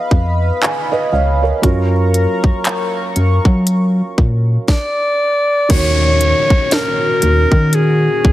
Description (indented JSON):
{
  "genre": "contemporary R&B",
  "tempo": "59 BPM",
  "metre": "4/4",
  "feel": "swing 58% on 16ths",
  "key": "Eb minor",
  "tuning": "A4 = 438 Hz",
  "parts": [
    { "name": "felt-muted upright piano", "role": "accompaniment", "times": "0.0-8.3 s", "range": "Eb3 to Ab5", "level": "-22 LUFS", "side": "right 4 dB", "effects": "none" },
    { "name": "chorused pulse-width pad", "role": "sustained chords", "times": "0.0-8.3 s", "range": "Bb2 to Db6", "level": "-21 LUFS", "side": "left 2 dB", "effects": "none" },
    { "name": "solid FM bass", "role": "bass", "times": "0.1-8.3 s", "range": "Db2 to Gb3", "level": "-14 LUFS", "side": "equal", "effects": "none" },
    { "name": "trap drum kit", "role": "drums", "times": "0.1-8.3 s", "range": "crash cymbal, handclaps, hi-hat, kick drum, snare drum", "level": "-15 LUFS", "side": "equal", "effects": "none" },
    { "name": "breathy alto saxophone", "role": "melody", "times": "4.7-8.3 s", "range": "Ab4 to D5", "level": "-15 LUFS", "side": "equal", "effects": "none" },
    { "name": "downlifter", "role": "sound effects", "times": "5.7-8.3 s", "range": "none", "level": "-24 LUFS", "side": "left 2 dB", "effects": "none" }
  ],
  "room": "light reverb",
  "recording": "heavily compressed radio sound",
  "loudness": "-12 LUFS",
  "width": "side -15 dB against mid",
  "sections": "0.0-5.7 A section; 5.7-8.3 B section",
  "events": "none",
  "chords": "0.0 Db9/F; 1.6 Gbmaj7; 4.7 N.C.; 5.7 Ebm7",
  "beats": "0.61 | 1.63 2.65 3.67 4.68 | 5.70 6.72 7.73"
}